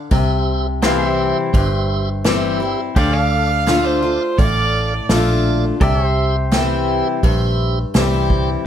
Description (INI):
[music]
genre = honky-tonk and classic country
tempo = 84 BPM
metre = 4/4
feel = straight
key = unclear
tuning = A4 = 440 Hz
[part]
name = picked acoustic archtop guitar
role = accompaniment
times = 0.0-8.6 s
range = G2 to F4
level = -20 LUFS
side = left 4 dB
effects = none
[part]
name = pedal steel guitar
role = sustained chords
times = 0.0-8.6 s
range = G4 to F5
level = -26 LUFS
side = equal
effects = none
[part]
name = tonewheel organ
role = accompaniment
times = 0.1-8.5 s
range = G4 to F5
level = -24 LUFS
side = right 4 dB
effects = slow rotary speaker
[part]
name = vintage muted fingered electric bass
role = bass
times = 0.1-8.6 s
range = G1 to D2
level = -20 LUFS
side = equal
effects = none
[part]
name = unplugged drum kit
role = drums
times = 0.1-8.5 s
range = hi-hat, kick drum, snare drum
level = -18 LUFS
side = equal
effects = none
[part]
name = clear fiddle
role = second line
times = 3.0-5.1 s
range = C5 to F5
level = -20 LUFS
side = right 3 dB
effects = none
[sound]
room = light reverb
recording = none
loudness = -15 LUFS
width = side -9 dB against mid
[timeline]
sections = 0.0-8.7 A section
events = none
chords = 0.1 C; 3.0 Dm; 5.8 C